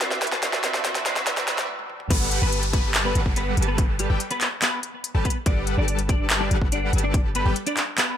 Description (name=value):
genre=future bass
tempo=143 BPM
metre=4/4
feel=half-time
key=G major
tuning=A4 = 440 Hz
part: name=clean electric guitar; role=melody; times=0.0-8.1 s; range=G3 to D5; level=-30 LUFS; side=equal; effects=ensemble chorus, sidechain pumping, tape echo
part: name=felt-muted upright piano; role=accompaniment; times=0.0-2.1 s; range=E3 to D4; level=-40 LUFS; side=right 2 dB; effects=sidechain pumping, tape echo
part: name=big bright polysynth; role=riff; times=0.0-7.6 s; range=G3 to A5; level=-29 LUFS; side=equal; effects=chorus, sidechain pumping
part: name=trap drum kit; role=drums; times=0.0-8.1 s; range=crash cymbal, handclaps, hi-hat, snare drum, toms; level=-24 LUFS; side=equal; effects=none
part: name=riser and downlifter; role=sound effects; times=0.1-5.5 s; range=none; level=-32 LUFS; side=equal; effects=none
part: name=warm 808-style bass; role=bass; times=2.1-7.5 s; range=G1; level=-24 LUFS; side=equal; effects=sidechain pumping
part: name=electronic kick drum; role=drums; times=2.1-7.2 s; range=none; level=-22 LUFS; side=equal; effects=none
room=light reverb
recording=high-pass filter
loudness=-21 LUFS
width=side -9 dB against mid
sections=0.0-2.1 A section; 2.1-8.2 B section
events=build-up 0.0-2.1; drum fill 0.0-1.7, 1.7-2.1; stop 1.7-2.1; drop 2.1-8.2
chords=0.0 D7; 2.1 Gmaj7